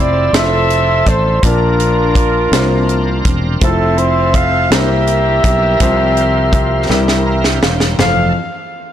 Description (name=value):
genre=slow gospel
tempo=55 BPM (dotted quarters)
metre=6/8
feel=straight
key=F major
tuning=A4 = 442 Hz
part: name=warm horn section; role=melody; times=0.0-8.3 s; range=C4 to F5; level=-15 LUFS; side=equal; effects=tape echo
part: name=warm grand piano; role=accompaniment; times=0.0-8.3 s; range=F2 to Bb5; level=-20 LUFS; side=left 4 dB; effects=none
part: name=bright tonewheel organ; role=sustained chords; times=0.0-8.3 s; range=E3 to G5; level=-25 LUFS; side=right 3 dB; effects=slow rotary speaker, chorus vibrato
part: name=fretless electric bass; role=bass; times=0.0-8.3 s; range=E1 to C2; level=-16 LUFS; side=equal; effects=none
part: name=tight funk drum kit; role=drums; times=0.3-8.2 s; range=hi-hat, kick drum, snare drum, toms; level=-15 LUFS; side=equal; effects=soft clipping on snare
room=light reverb, small room reverb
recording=blown-out, overdriven recording, overdrive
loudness=-11 LUFS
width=side -10 dB against mid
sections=0.0-8.0 A section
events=drum fill 6.9-8.0; grand piano fill 6.9-8.0; tonewheel organ fill 6.9-8.0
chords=0.0 Fmaj7; 1.4 Bb; 2.5 C9sus4; 3.6 Fmaj7; 4.7 C7; 5.8 F5/C; 6.9 C7; 8.0 Fmaj7